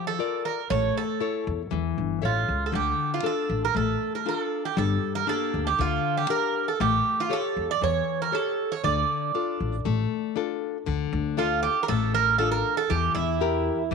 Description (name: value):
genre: greek folk, Greek bouzouki band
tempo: 118 BPM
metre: 4/4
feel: straight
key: D harmonic minor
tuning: A4 = 440 Hz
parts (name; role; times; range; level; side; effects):
- Greek bouzouki; melody; 0.0-13.9 s; E4 to D5; -26 LUFS; right 9 dB; none
- nylon-string guitar; accompaniment; 0.0-13.9 s; D3 to E5; -29 LUFS; left 14 dB; none
- upright bass; bass; 0.7-13.9 s; G1 to E2; -28 LUFS; left 2 dB; none
room: moderate spring reverb, RT60 2.1 s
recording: 1960s-style stereo with parts hard left and right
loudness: -23 LUFS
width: side -5 dB against mid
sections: 0.0-10.9 A section; 10.9-13.9 B section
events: none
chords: 0.0 Bb; 0.7 A; 2.7 Dm; 4.8 Gm; 6.8 A7; 8.8 Dm; 12.9 Edim